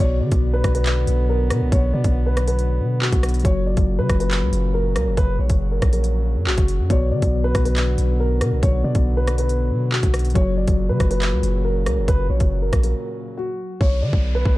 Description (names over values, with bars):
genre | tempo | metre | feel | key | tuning
hip hop, drill | 139 BPM | 4/4 | half-time | B harmonic minor | A4 = 441 Hz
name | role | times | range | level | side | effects
dark concert grand piano | melody | 0.0-14.5 s | F#4 to D5 | -26 LUFS | equal | none
mellow tine electric piano | accompaniment | 0.0-13.8 s | B2 to D5 | -27 LUFS | left 3 dB | medium stereo tremolo
warm brass ensemble | sustained chords | 0.0-14.6 s | A#2 to B3 | -30 LUFS | right 1 dB | none
long sustained 808-style bass | bass | 0.0-14.6 s | F#1 to D3 | -20 LUFS | equal | none
drill drum kit | drums | 0.3-14.6 s | handclaps, hi-hat, kick drum, rim click | -20 LUFS | equal | vintage 12-bit sampler grit
downlifter | sound effects | 13.8-14.6 s | none | -35 LUFS | right 2 dB | none
room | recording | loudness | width
digital ambience | dark, warm production | -17 LUFS | side -18 dB against mid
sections
0.0-13.8 A section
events
break 12.9-13.8; hi-hats muted 13.8-14.6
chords
0.0 Bm; 3.4 F#; 6.9 Bm; 10.4 F#; 13.8 Bm